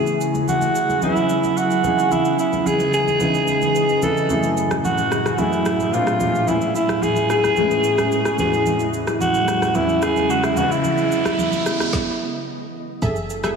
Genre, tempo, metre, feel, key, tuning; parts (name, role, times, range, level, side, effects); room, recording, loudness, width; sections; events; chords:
amapiano; 110 BPM; 4/4; straight; A4 = 440 Hz
growling alto saxophone; melody; 0.0-12.5 s; E4 to A4; -20 LUFS; right 1 dB; analog delay
clear grand piano; accompaniment; 0.0-12.0 s; E2 to D#5; -25 LUFS; left 1 dB; lush chorus
glassy FM pad; sustained chords; 0.0-13.6 s; A2 to D#5; -24 LUFS; equal; ensemble chorus, built-in reverb, sidechain pumping
afro-pop drum kit; drums; 0.1-13.6 s; kick drum, rim click, shaker, snare drum; -28 LUFS; equal
congas; percussion; 0.3-13.6 s; -29 LUFS; right 2 dB
riser; sound effects; 10.2-11.9 s; -31 LUFS; right 2 dB
punchy chord stab; stabs; 13.0-13.6 s; G#4 to E5; -24 LUFS; right 1 dB; chorus, analog delay
woody log drum bass; bass; 13.0-13.6 s; F#1; -26 LUFS; right 1 dB
wet lush hall reverb, RT60 2.5 s; dreamy mix soaked in reverb, small room ambience; -17 LUFS; side -5 dB against mid
0.0-13.0 A section
riser 10.2-13.0; stop 11.9-13.0
0.0 E69; 1.8 C#m9; 4.3 F#m9; 5.9 A#maj7; 6.5 Amaj7; 8.4 E69; 10.6 C#m9; 13.0 F#m9